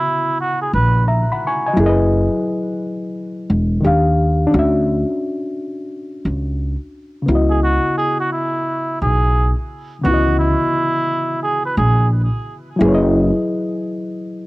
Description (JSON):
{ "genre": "lo-fi hip hop", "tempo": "87 BPM", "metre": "4/4", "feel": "swing 64% on 16ths", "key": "C# dorian", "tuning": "A4 = 440 Hz", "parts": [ { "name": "trumpet with cup mute", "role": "melody", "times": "0.0-1.0, 7.5-12.1 s", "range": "E4 to B4", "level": "-20 LUFS", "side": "right 2 dB", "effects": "low-pass filter, tape echo" }, { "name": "reed electric piano", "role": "accompaniment", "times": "0.0-14.5 s", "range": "C#3 to C#6", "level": "-19 LUFS", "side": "left 1 dB", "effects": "low-pass filter, plate reverb" }, { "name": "upright bass", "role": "bass", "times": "0.7-13.3 s", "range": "E1 to D#2", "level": "-16 LUFS", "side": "equal", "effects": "none" } ], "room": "moderate booth ambience, RT60 0.2 s", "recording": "home recording on cassette", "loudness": "-15 LUFS", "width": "side -20 dB against mid", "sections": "0.0-14.5 A section", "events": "none", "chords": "0.0 C#m11; 1.8 F#13sus4; 3.8 D#maj9; 4.5 Dmaj9; 7.3 C#m11; 12.8 F#13sus4" }